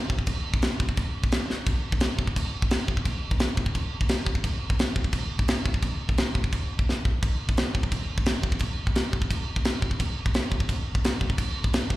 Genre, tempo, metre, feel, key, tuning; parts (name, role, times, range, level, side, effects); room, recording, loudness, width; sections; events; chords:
metal; 173 BPM; 4/4; straight
modern studio drum kit; drums; 0.1-12.0 s; crash cymbal, kick drum, snare drum; -24 LUFS; equal
light reverb; live gig heard through the venue's PA, recital hall reverb; -24 LUFS; side -17 dB against mid
0.0-12.0 A section
drum fill 1.5, 6.9-7.2